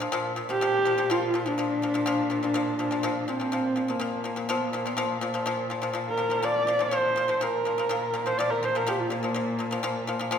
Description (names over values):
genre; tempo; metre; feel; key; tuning
mongolian traditional, Mongolian folk; 124 BPM; 4/4; straight; Bb gong mode; A4 = 440 Hz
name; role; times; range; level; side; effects
pipa; arpeggios; 0.0-10.4 s; Bb2 to F3; -29 LUFS; left 3 dB; none
rich cello; drone; 0.0-10.4 s; Bb2; -36 LUFS; right 1 dB; none
dark horsehead fiddle; melody; 0.5-10.4 s; Bb3 to D5; -26 LUFS; equal; none
room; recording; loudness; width
wet scoring stage reverb, RT60 1.6 s; minimal, uncompressed stereo recording; -24 LUFS; side -8 dB against mid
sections
0.0-10.4 A section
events
none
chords
0.0 Bb5